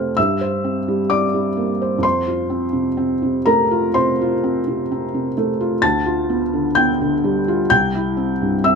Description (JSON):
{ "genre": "classical, romantic nocturne for solo piano", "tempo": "64 BPM", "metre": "4/4", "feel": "rubato", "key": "F major", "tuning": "A4 = 441 Hz", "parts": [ { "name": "felt-muted upright piano", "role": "solo", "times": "0.0-8.8 s", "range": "C2 to A6", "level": "-16 LUFS", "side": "equal", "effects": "none" } ], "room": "light reverb", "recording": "minimal, uncompressed stereo recording", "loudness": "-16 LUFS", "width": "side -5 dB against mid", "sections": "0.0-8.8 A section", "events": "none", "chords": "0.2 C7/G; 2.0 F; 5.8 G7/D; 7.7 C" }